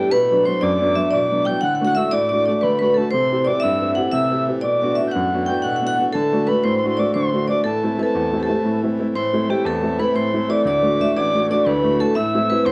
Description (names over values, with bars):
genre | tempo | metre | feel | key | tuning
celtic folk | 120 BPM (dotted quarters) | 9/8 | straight | A dorian | A4 = 438 Hz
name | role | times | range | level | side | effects
vibraphone with hard mallets | melody | 0.0-12.7 s | G4 to G5 | -22 LUFS | equal | none
tin whistle | second line | 0.0-12.7 s | G5 to G6 | -29 LUFS | equal | none
clear upright piano | accompaniment | 0.0-12.7 s | A1 to G4 | -24 LUFS | equal | none
accordion | drone | 0.0-12.7 s | A2 to E3 | -33 LUFS | equal | none
room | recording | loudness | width
moderate studio reverb, RT60 0.9 s | worn, warbling old tape, cassette tape, warbly pitch drift | -19 LUFS | mono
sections
0.0-9.1 A section; 9.1-12.7 B section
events
none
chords
0.1 Bm; 1.6 D; 3.1 C; 4.6 Bm; 6.1 D; 7.6 Am; 10.7 D; 12.2 Am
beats
| 0.12 0.62 1.12 | 1.62 2.13 2.63 | 3.13 3.63 4.13 | 4.63 5.14 5.64 | 6.14 6.64 7.14 | 7.64 8.15 8.65 | 9.15 9.65 10.15 | 10.65 11.15 11.65 | 12.15 12.65